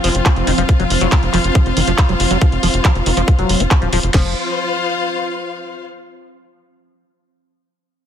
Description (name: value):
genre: psychedelic trance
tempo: 139 BPM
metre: 4/4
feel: straight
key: unclear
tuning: A4 = 441 Hz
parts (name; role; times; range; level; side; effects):
- pulsing gated texture; sustained chords; 0.0-4.2 s; F3 to C4; -24 LUFS; right 4 dB; chorus, built-in reverb, sidechain pumping
- liquid acid bass; riff; 0.0-4.3 s; Eb3 to Gb4; -22 LUFS; moving between left 7 dB and right 3 dB; phaser, auto-pan, sidechain pumping, dub echo
- tight sequencer bass; bass; 0.0-4.3 s; Eb1 to F1; -19 LUFS; equal; none
- drum and bass drum kit; drums; 0.0-4.1 s; handclaps, hi-hat; -21 LUFS; right 1 dB; none
- rich chamber string section; texture; 0.0-5.8 s; F4 to F5; -21 LUFS; left 4 dB; sidechain pumping
- drum and bass drum kit; drums; 0.3-4.2 s; crash cymbal, kick drum, snare drum; -13 LUFS; equal; none
room: light reverb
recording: dense, heavily limited modern master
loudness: -13 LUFS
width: side -9 dB against mid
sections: 0.0-4.1 A section; 4.1-5.9 B section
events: filter sweep on analog synth bass 0.0-4.1; filter sweep on acid bass 0.0-4.1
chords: 0.0 F5